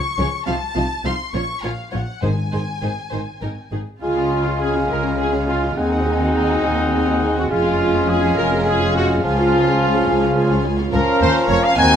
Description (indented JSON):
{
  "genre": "quick classical-period movement for symphony orchestra",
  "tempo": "69 BPM (dotted quarters)",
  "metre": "6/8",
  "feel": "rubato",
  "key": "Db major",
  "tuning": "A4 = 439 Hz",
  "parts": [
    { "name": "rich studio violin section", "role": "melody", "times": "0.0-12.0 s", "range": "Eb5 to Db6", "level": "-30 LUFS", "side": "left 3 dB", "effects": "none" },
    { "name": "rich studio violin section", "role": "second line", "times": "0.2-12.0 s", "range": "Eb4 to Ab5", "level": "-27 LUFS", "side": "right 2 dB", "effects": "none" },
    { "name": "warm studio viola section", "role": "accompaniment", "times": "0.2-12.0 s", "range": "Eb3 to C5", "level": "-25 LUFS", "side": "right 2 dB", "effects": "none" },
    { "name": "warm studio cello section", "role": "bass", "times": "0.2-12.0 s", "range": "Db2 to Db3", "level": "-26 LUFS", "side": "equal", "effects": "none" },
    { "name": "warm studio double bass section", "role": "bass", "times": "0.2-12.0 s", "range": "F1 to Eb2", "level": "-24 LUFS", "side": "equal", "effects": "none" },
    { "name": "timpani", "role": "percussion", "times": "2.2-3.1 s", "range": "Ab2", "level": "-25 LUFS", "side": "left 1 dB", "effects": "none" },
    { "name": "bright clarinet", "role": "second line", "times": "4.0-12.0 s", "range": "C4 to Db4", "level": "-26 LUFS", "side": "left 2 dB", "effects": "none" },
    { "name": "mellow concert flute", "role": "second line", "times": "4.0-12.0 s", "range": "Ab5 to Bb5", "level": "-27 LUFS", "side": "left 4 dB", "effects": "none" },
    { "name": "warm oboe", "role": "second line", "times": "4.0-12.0 s", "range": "F5 to Gb5", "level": "-27 LUFS", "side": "right 1 dB", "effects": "none" },
    { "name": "warm bassoon", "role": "accompaniment", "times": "4.0-12.0 s", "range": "Eb3 to Ab3", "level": "-25 LUFS", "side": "right 2 dB", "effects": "none" },
    { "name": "warm French horn section", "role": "sustained chords", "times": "4.0-12.0 s", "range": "Bb3 to Ab4", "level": "-26 LUFS", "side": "left 3 dB", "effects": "none" },
    { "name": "bright trumpet section", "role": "stabs", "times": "4.0-12.0 s", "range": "Eb4 to Ab5", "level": "-22 LUFS", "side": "equal", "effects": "none" }
  ],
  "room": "moderate stone room reverb, RT60 1.0 s",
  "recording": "none",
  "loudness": "-16 LUFS",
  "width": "side -8 dB against mid",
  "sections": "0.0-4.0 A section; 4.0-12.0 A section",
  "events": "none",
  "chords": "0.5 F7/C; 1.3 Bbm; 2.2 Ab5; 4.0 Db; 5.8 Ab7/Eb; 7.5 Db/F; 9.2 Db; 10.9 Bbm/Db"
}